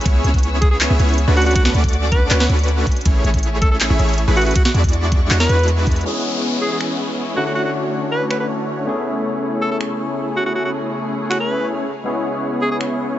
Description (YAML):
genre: future bass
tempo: 160 BPM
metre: 4/4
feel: half-time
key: A major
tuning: A4 = 440 Hz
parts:
  - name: dark chamber string section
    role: sustained chords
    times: 0.0-13.2 s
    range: C#3 to E6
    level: -32 LUFS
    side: left 2 dB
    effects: sidechain pumping
  - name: supersaw chords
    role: riff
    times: 0.0-13.2 s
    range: G#3 to E5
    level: -22 LUFS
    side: equal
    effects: sidechain pumping, low-pass filter
  - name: warm 808-style bass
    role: bass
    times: 0.0-6.0 s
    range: A1 to E2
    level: -17 LUFS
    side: equal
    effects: sidechain pumping
  - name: trap drum kit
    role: drums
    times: 0.0-12.9 s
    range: finger snaps, handclaps, hi-hat, ride cymbal, snare drum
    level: -23 LUFS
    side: equal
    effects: none
  - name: electronic kick drum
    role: drums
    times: 0.1-5.9 s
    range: none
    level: -16 LUFS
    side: equal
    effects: none
  - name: bright alto saxophone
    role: melody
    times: 0.6-12.8 s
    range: F#4 to B4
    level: -24 LUFS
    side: equal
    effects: vintage 12-bit sampler grit, sidechain pumping, dub echo
  - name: barky tine electric piano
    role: accompaniment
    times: 6.0-13.2 s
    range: D3 to C#5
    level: -25 LUFS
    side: left 3 dB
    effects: sidechain pumping
  - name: downlifter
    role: sound effects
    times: 6.1-9.1 s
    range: none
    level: -28 LUFS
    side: left 3 dB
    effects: none
room: little or no reverb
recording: nothing above 7.8 kHz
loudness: -15 LUFS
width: side -13 dB against mid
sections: 0.0-6.1 A section; 6.1-13.2 B section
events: drop 0.0-6.1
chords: 0.1 C#m7; 1.4 Dmaj7; 2.9 Amaj7; 4.6 E13; 6.1 C#m7; 7.4 Dmaj7; 8.9 Amaj7; 12.1 C#m7